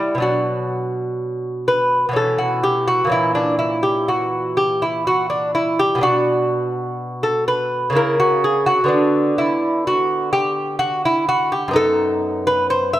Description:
classical, baroque-style dance for lute; 63 BPM; 3/4; rubato; B minor; A4 = 440 Hz
lute; solo; 0.0-13.0 s; F#2 to E5; -16 LUFS; equal
light reverb; -16 LUFS; side -13 dB against mid
0.2-13.0 A section
0.2 Bm; 2.2 B9sus4; 3.1 A#dim7; 6.0 Bm; 8.0 A#dim/C#; 8.9 Bm/D; 11.8 B/F#

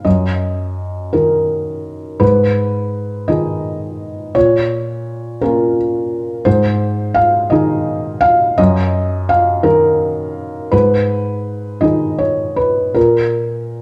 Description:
neoclassical minimalist piano; 56 BPM (dotted quarters); 6/8; rubato; A4 = 440 Hz
felt-muted upright piano; solo; 0.0-13.8 s; Gb2 to F5; -16 LUFS; equal
moderate large studio reverb, RT60 1.2 s; band playing live in one room; -16 LUFS; mono
0.0-13.8 A section
0.1 Ebm/Gb; 2.2 Abm; 4.4 Bbm; 6.5 Ab; 8.6 Ebm/Gb; 10.7 Abm; 13.0 N.C.

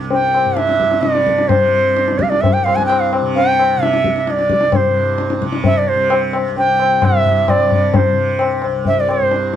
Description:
indian classical, Hindustani; 130 BPM; 7/4; straight; C major; A4 = 440 Hz
tanpura; drone; 0.0-9.6 s; C2 to C3; -22 LUFS; right 3 dB
bright reedy bansuri; melody; 0.1-9.6 s; C5 to Ab5; -15 LUFS; right 2 dB
tabla; percussion; 0.1-9.6 s; -17 LUFS; left 5 dB
light reverb; dark, warm production; -12 LUFS; side -10 dB against mid
0.0-9.6 A section

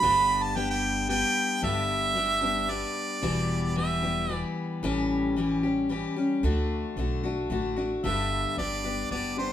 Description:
honky-tonk and classic country; 112 BPM; 3/4; straight; G major; A4 = 441 Hz
bright harmonica; melody; 0.0-4.5, 8.0-9.5 s; C5 to B5; -26 LUFS; right 3 dB
picked steel-string acoustic guitar; accompaniment; 0.0-9.5 s; E2 to G4; -28 LUFS; left 3 dB
upright bass; bass; 0.0-9.5 s; E1 to D2; -34 LUFS; right 1 dB
moderate large studio reverb, RT60 0.9 s; band playing live in one room; -25 LUFS; side -10 dB against mid
0.0-1.6 A section; 1.6-8.0 B section; 8.0-9.5 C section
harmonica solo 0.0-1.6
0.0 G; 3.2 Em; 4.8 A7; 6.4 D; 8.0 G

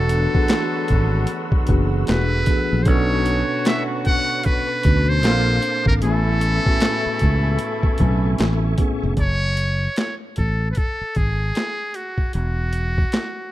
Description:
R&B, neo-soul; 76 BPM; 4/4; swing 60% on 16ths; A4 = 442 Hz
trumpet with metal mute; melody; 0.0-13.5 s; F#4 to F#5; -24 LUFS; equal
mellow tine electric piano; accompaniment; 0.0-9.2 s; A2 to G#5; -25 LUFS; equal; slow stereo tremolo
tonewheel organ; sustained chords; 0.0-9.1 s; A3 to E6; -33 LUFS; left 1 dB; chorus vibrato, fast rotary speaker
warm horn section; stabs; 0.0-8.7 s; C#3 to F#4; -29 LUFS; left 1 dB
fingered electric bass; bass; 0.0-13.0 s; E1 to D2; -20 LUFS; equal
boom bap sampler-style drum kit; drums; 0.1-13.4 s; handclaps, hi-hat, kick drum, snare drum; -21 LUFS; equal
digital ambience; rough home demo mix; -17 LUFS; side -15 dB against mid
0.0-9.2 A section; 9.2-13.5 B section
0.0 E9sus4; 2.9 Bm9; 5.2 Bbmaj7; 6.0 Amaj7; 9.2 F#madd9; 12.3 Esus2

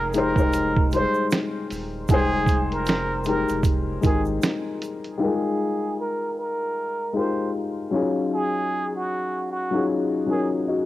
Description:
lo-fi hip hop; 77 BPM; 4/4; swing 59% on 16ths; F minor; A4 = 440 Hz
trumpet with plunger mute; melody; 0.0-10.5 s; Gb4 to C5; -27 LUFS; right 2 dB; low-pass filter
dark upright piano; accompaniment; 0.0-10.9 s; Gb3 to G5; -24 LUFS; left 3 dB; cassette tape, low-pass filter
saturated sub bass; bass; 0.0-4.4 s; Eb1 to Ab1; -30 LUFS; right 2 dB
lo-fi sampler-style drum kit; drums; 0.1-5.2 s; hi-hat, kick drum, snare drum; -23 LUFS; right 2 dB; cassette tape
egg shaker; percussion; 0.1-5.0 s; -45 LUFS; right 10 dB
light reverb, studio ambience; home recording on cassette; -21 LUFS; side -15 dB against mid
0.0-5.2 A section; 5.2-10.9 B section
filter sweep 5.2-10.9
0.0 Fm11; 7.9 Ebm11

